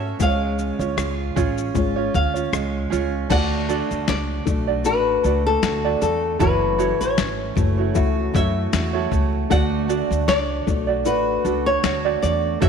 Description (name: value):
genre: acoustic pop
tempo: 77 BPM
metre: 4/4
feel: swing 55% on 16ths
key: unclear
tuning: A4 = 440 Hz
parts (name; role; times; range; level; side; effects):
- flamenco guitar; melody; 0.0-12.7 s; A4 to F#5; -23 LUFS; left 4 dB; none
- felt-muted upright piano; accompaniment; 0.0-12.7 s; G#3 to F#5; -29 LUFS; left 11 dB; none
- tenor ukulele; accompaniment; 0.0-12.7 s; C#4 to D5; -26 LUFS; right 11 dB; none
- picked steel-string acoustic guitar; arpeggios; 0.0-12.7 s; E3 to F#4; -28 LUFS; right 9 dB; none
- upright bass; bass; 0.0-12.7 s; F#1 to G#2; -25 LUFS; equal; none
- dusty soul sampler-style drum kit; drums; 0.2-12.7 s; crash cymbal, kick drum, rim click, shaker, snare drum; -24 LUFS; left 3 dB; none
room: moderate echo chamber reverb, RT60 2.1 s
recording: 1960s-style stereo with parts hard left and right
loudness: -18 LUFS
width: side -6 dB against mid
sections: 0.0-3.3 A section; 3.3-12.7 B section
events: none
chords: 0.2 C#; 3.3 D; 6.4 F#m7; 9.5 D